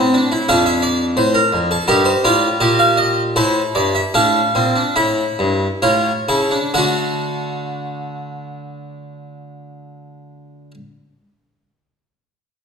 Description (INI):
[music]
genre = classical, baroque-style 4-part fugue for harpsichord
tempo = 63-89 BPM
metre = 4/4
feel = straight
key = unclear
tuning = A4 = 435 Hz
[part]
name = harpsichord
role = solo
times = 0.0-10.7 s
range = F2 to F#5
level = -15 LUFS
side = equal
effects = none
[sound]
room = wet recital hall reverb, RT60 1.4 s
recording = minimal, uncompressed stereo recording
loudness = -14 LUFS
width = side -6 dB against mid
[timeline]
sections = 0.0-6.7 A section; 6.7-10.5 B section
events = slowing down 0.0-6.7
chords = 0.5 Dm/F; 1.9 Eb/G; 3.4 A7sus4; 5.0 A7; 6.7 D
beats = | 0.49 1.17 1.88 2.60 | 3.36 4.14 4.96 5.82 | 6.74 7.69 8.64 9.58